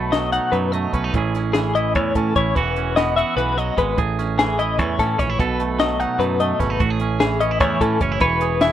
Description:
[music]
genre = math rock and midwest emo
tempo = 297 BPM (eighths)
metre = 7/8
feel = straight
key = A lydian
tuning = A4 = 440 Hz
[part]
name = twangy electric guitar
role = accompaniment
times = 0.0-8.7 s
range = A2 to C#5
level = -22 LUFS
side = right 7 dB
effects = none
[part]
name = twelve-string electric guitar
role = arpeggios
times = 0.0-8.7 s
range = G#4 to F#5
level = -21 LUFS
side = left 6 dB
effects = tremolo
[part]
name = modern bright picked electric bass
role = bass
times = 0.0-8.7 s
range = E1 to A2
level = -24 LUFS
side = equal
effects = none
[part]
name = compact cocktail drum kit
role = drums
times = 0.1-8.7 s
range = hi-hat, kick drum, snare drum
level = -24 LUFS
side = equal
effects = none
[sound]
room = light reverb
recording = rough home demo mix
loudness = -17 LUFS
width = side -11 dB against mid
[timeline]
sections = 0.0-8.7 A section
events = none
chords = 0.0 B7; 1.1 Amaj7; 2.6 E69; 4.0 Amaj7; 5.4 B7; 6.8 Amaj7; 8.2 E6

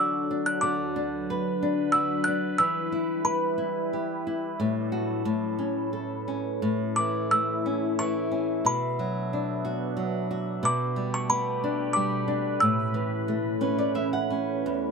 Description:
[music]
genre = children's music, lullaby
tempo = 90 BPM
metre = 3/4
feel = rubato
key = unclear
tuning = A4 = 439 Hz
[part]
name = music box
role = melody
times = 0.0-13.9 s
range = B5 to F#6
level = -26 LUFS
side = equal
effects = none
[part]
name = flamenco guitar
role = accompaniment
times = 0.0-14.9 s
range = E2 to F#5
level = -27 LUFS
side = left 1 dB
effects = none
[part]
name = evolving wavetable pad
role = sustained chords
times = 0.0-14.9 s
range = D2 to E5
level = -33 LUFS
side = right 2 dB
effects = phaser, built-in reverb
[sound]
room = light reverb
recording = close, detailed microphones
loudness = -24 LUFS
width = side -5 dB against mid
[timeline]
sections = 0.0-6.6 A section; 6.6-14.9 B section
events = nylon-string guitar fill 13.3-14.6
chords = 0.0 D; 0.6 Bm/D; 2.6 Em; 4.6 D/A; 5.3 Aadd9; 6.6 A; 8.6 Bm; 10.6 Gadd9/B; 12.6 Aadd9

